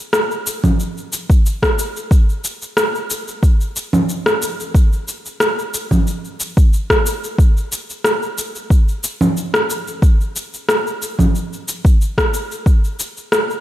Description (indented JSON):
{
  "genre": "downtempo",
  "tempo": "91 BPM",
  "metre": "4/4",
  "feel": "swing 53% on 16ths",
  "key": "none",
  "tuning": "none",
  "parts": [
    { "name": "electronic rim click, shaker and congas", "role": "drums", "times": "0.1-13.6 s", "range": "none", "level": "-18 LUFS", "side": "equal", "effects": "overdrive" },
    { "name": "electronic kick drum", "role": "drums", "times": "0.6-12.8 s", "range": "none", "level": "-13 LUFS", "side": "equal", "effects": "overdrive" }
  ],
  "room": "light reverb",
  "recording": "dark, warm production",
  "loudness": "-15 LUFS",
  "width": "side -14 dB against mid",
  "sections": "0.0-13.6 A section",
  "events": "none",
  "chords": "none"
}